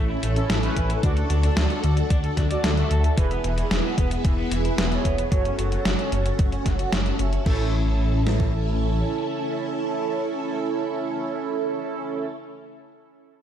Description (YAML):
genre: synthwave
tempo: 112 BPM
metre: 4/4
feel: straight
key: A major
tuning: A4 = 440 Hz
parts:
  - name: string machine, full ensemble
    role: sustained chords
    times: 0.0-12.3 s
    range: B3 to A4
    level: -29 LUFS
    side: left 1 dB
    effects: phaser, ensemble chorus, sidechain pumping
  - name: raw garage guitar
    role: riff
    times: 0.0-7.7 s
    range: E3 to D5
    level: -33 LUFS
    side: equal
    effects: overdrive, lush chorus, low-pass filter, tape echo
  - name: dark detuned saw bass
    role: bass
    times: 0.0-9.0 s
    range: E1 to D2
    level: -23 LUFS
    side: equal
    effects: tube saturation, sidechain pumping
  - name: gated 80s digital drum machine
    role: drums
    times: 0.2-7.6 s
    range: crash cymbal, hi-hat, snare drum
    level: -28 LUFS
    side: equal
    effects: gated reverb, gated reverb snare, overdrive
  - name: analog synth brass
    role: stabs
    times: 0.4-12.3 s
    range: C#4 to F#5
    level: -30 LUFS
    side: right 5 dB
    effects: chorus, ping-pong delay
  - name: gated 80s digital drum machine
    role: drums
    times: 0.8-8.5 s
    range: kick drum, snare drum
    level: -22 LUFS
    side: equal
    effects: gated reverb, gated reverb snare, overdrive
room: light reverb, digital ambience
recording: dark, warm production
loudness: -21 LUFS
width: side -9 dB against mid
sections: 0.0-7.5 A section; 7.5-11.7 B section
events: filter sweep on analog polysynth 0.0-7.5; filter sweep on overdriven electric guitar 0.0-7.5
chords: 0.0 A; 1.0 D; 3.2 E; 5.3 F#m; 7.5 A